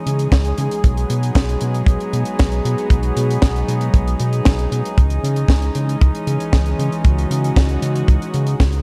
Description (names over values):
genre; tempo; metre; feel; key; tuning
italo disco; 116 BPM; 4/4; straight; C# minor; A4 = 439 Hz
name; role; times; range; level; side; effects
dark studio string section; sustained chords; 0.0-8.8 s; E3 to G#4; -25 LUFS; equal; none
round analog bass; bass; 0.1-8.8 s; B1 to C#3; -22 LUFS; equal; none
tight funk drum kit; drums; 0.1-8.8 s; hi-hat, snare drum; -27 LUFS; equal; none
kick drum; drums; 0.3-8.7 s; none; -16 LUFS; equal; none
room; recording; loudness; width
light reverb; dark, warm production; -17 LUFS; mono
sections
0.0-8.8 A section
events
none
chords
0.0 C#madd9; 0.8 B6; 5.0 C#madd9